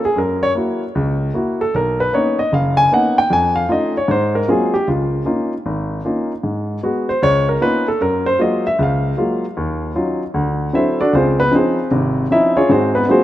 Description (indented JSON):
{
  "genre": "solo jazz",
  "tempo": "153 BPM",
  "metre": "4/4",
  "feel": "swing 65% on 8ths",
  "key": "Db major from 4.9 s",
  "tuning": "A4 = 440 Hz",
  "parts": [
    { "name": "warm grand piano", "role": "solo", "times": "0.0-13.2 s", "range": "F#1 to Ab5", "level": "-15 LUFS", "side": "equal", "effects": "none" }
  ],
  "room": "light reverb, small room ambience",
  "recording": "rough home demo mix",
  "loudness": "-15 LUFS",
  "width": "side -13 dB against mid",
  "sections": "0.0-4.9 A section; 4.9-13.2 A section",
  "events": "grand piano solo 0.0-13.2",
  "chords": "0.2 Gb7; 1.7 Bmaj9; 3.3 Faug7; 4.1 Ab13; 4.9 Db69; 6.4 Abm7; 7.2 Db13; 8.0 Gbmaj9; 9.6 Ebm9; 10.3 D9; 11.1 Dbmaj9; 12.7 Ab13",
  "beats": "| 0.17 0.56 0.95 1.34 | 1.74 2.13 2.52 2.91 | 3.30 3.69 4.08 4.47 | 4.87 5.26 5.65 6.04 | 6.43 6.82 7.21 7.60 | 8.00 8.39 8.78 9.17 | 9.56 9.95 10.34 10.73 | 11.12 11.52 11.91 12.30 | 12.69 13.08"
}